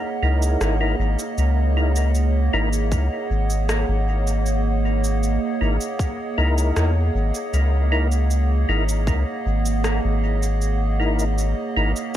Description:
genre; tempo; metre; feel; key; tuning
ambient dub; 78 BPM; 4/4; straight; C# dorian; A4 = 439 Hz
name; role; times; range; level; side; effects
warbly tape-like pad; sustained chords; 0.0-12.2 s; A#3 to F#5; -26 LUFS; right 3 dB; chorus, built-in reverb
percussive tonewheel organ; stabs; 0.2-11.9 s; D#4 to A#4; -28 LUFS; left 1 dB; chorus vibrato, slow rotary speaker, dub echo
soft dub sub bass; bass; 0.2-11.9 s; G#1 to E2; -20 LUFS; equal; tube saturation
electronic cabasa and rim click; drums; 0.4-12.2 s; none; -30 LUFS; right 1 dB; overdrive, dub echo
electronic kick drum; drums; 2.9-9.2 s; none; -25 LUFS; equal; overdrive
room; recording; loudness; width
light reverb; none; -19 LUFS; side -12 dB against mid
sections
0.0-12.2 A section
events
none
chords
0.0 C#m69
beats
0.61 | 1.38 2.15 2.92 3.69 | 4.46 5.23 6.00 6.76 | 7.53 8.30 9.07 9.84 | 10.61 11.38 12.15

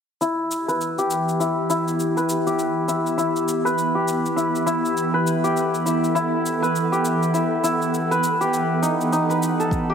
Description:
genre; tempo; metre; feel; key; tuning
organic downtempo; 101 BPM; 4/4; swing 60% on 16ths; E harmonic minor; A4 = 440 Hz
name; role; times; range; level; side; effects
ethereal airy pad; sustained chords; 0.7-9.9 s; E3 to F#5; -24 LUFS; right 2 dB; ensemble chorus, built-in reverb, sidechain pumping
santur; arpeggios; 0.2-9.9 s; D#4 to B4; -21 LUFS; left 1 dB; low-pass filter, tape echo
cabasa; drums; 0.2-9.9 s; none; -34 LUFS; left 3 dB; none
electronic kick drum; drums; 9.7-9.9 s; none; -25 LUFS; equal; none
room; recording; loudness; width
moderate lush hall reverb, RT60 1.8 s; none; -19 LUFS; side -7 dB against mid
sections
0.2-9.9 A section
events
filter sweep on santur 0.2-9.9; filter sweep on ambient pad 0.2-9.9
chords
0.2 Em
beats
| 0.21 0.81 1.40 1.99 | 2.59 3.18 3.77 4.37 | 4.96 5.56 6.15 6.75 | 7.34 7.93 8.53 9.12 | 9.72

